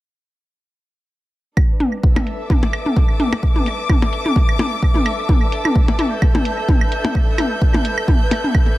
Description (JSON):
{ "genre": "minimal techno", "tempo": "129 BPM", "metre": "4/4", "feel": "swing 55% on 16ths", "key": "unclear", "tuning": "A4 = 441 Hz", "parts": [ { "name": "electronic kick drum", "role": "drums", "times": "1.6-8.6 s", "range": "none", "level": "-15 LUFS", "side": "equal", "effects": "studio ambience" }, { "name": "electronic claves, toms and percussion blips", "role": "percussion", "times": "1.6-8.6 s", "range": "none", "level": "-20 LUFS", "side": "left 1 dB", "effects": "overdrive, studio ambience, tape echo" }, { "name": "dark studio string section", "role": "texture", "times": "1.6-8.8 s", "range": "D4 to G6", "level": "-24 LUFS", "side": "left 1 dB", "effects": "sidechain pumping" }, { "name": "pulsing gated texture", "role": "texture", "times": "1.6-8.8 s", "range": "B4", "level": "-32 LUFS", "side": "left 1 dB", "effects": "chorus, built-in reverb, sidechain pumping" }, { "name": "electronic hi-hat", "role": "drums", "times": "1.8-8.4 s", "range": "none", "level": "-30 LUFS", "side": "right 2 dB", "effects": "low-pass filter on hats, studio ambience" } ], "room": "light reverb, digital ambience", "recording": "echo-heavy mix", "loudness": "-15 LUFS", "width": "side -17 dB against mid", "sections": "1.6-8.8 A section", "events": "none", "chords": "1.6 D5" }